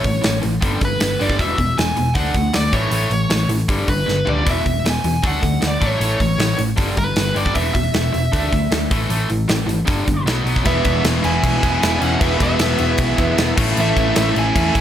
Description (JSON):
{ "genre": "hard rock", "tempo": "154 BPM", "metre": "4/4", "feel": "straight", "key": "unclear", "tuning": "A4 = 440 Hz", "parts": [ { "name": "nasal lead guitar with a parked wah", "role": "melody", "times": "0.0-14.8 s", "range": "B4 to G#5", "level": "-23 LUFS", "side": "right 1 dB", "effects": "overdrive, slapback echo" }, { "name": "overdriven electric guitar", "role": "riff", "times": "0.0-14.8 s", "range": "E2 to D4", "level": "-22 LUFS", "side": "left 1 dB", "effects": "none" }, { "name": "hollow-body short-scale picked electric bass", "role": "bass", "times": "0.0-14.8 s", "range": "E1 to E2", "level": "-22 LUFS", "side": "equal", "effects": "none" }, { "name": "gated 80s drum kit", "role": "drums", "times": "0.0-14.8 s", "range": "crash cymbal, hi-hat, kick drum, snare drum, toms", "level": "-21 LUFS", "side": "equal", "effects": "none" }, { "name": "distorted electric guitar", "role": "riff", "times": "10.6-14.8 s", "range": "A2 to E4", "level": "-23 LUFS", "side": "equal", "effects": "distortion" }, { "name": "octave-fuzz lead guitar", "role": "second line", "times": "10.7-14.8 s", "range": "A3 to E4", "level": "-26 LUFS", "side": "right 2 dB", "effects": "distortion" } ], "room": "small room ambience", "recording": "none", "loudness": "-15 LUFS", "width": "side -10 dB against mid", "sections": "0.0-10.7 A section; 10.7-14.8 B section", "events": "drum fill 4.1-4.5", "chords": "0.0 A; 0.6 G; 1.4 E; 2.2 D; 2.7 A; 3.7 G; 4.5 E; 5.2 D; 5.8 A; 6.8 G; 7.6 E5; 8.3 Dsus2; 8.9 A5; 9.9 G5; 10.3 B5; 10.7 E; 13.6 A" }